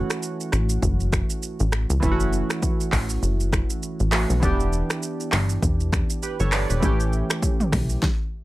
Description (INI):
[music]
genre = afrobeats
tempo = 100 BPM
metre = 4/4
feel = swing 58% on 16ths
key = unclear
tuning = A4 = 438 Hz
[part]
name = warm analog keys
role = accompaniment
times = 0.0-8.0 s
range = E3 to D5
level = -27 LUFS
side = right 2 dB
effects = chorus, plate reverb
[part]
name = plucky analog bass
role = bass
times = 0.0-8.0 s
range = E1 to C#2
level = -22 LUFS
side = equal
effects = none
[part]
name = deep house drum kit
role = drums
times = 0.1-8.2 s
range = finger snaps, handclaps, hi-hat, kick drum, rim click, shaker, snare drum, toms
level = -24 LUFS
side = equal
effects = overdrive
[sound]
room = little or no reverb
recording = none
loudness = -20 LUFS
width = side -18 dB against mid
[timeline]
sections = 0.0-8.4 A section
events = none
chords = 0.0 F#m7; 4.4 Em7; 6.8 A7